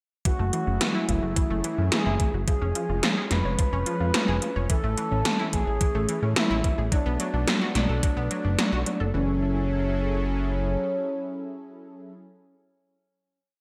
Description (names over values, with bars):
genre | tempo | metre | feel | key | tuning
synthwave | 108 BPM | 4/4 | straight | F# minor | A4 = 439 Hz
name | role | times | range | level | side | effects
expressive portamento lead | melody | 0.3-12.1 s | C#4 to B4 | -32 LUFS | equal | lush chorus, delay
soft supersaw | sustained chords | 0.3-12.1 s | E3 to A4 | -36 LUFS | equal | analog chorus, sidechain pumping
analog pluck | arpeggios | 0.3-9.4 s | E3 to C#5 | -35 LUFS | equal | chorus, delay
80s electronic pad drums | drums | 0.3-9.0 s | hi-hat, snare drum | -29 LUFS | equal | gated reverb
electronic kick drum | drums | 0.3-8.1 s | none | -28 LUFS | equal | overdrive
fat analog bass | bass | 0.4-10.8 s | E#1 to A2 | -29 LUFS | equal | none
room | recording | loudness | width
moderate plate reverb, RT60 1.6 s, digital ambience | bright 1980s-style digital production | -25 LUFS | mono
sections
0.3-9.1 verse; 9.1-11.4 final chord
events
none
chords
0.3 F#m7; 2.5 C#/E#; 4.7 Amaj7; 6.9 Bm7; 9.1 F#m7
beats
| 0.25 0.81 1.36 1.92 | 2.48 3.03 3.59 4.14 | 4.70 5.25 5.81 6.36 | 6.92 7.47 8.03 8.59 | 9.14 9.70 10.25 10.81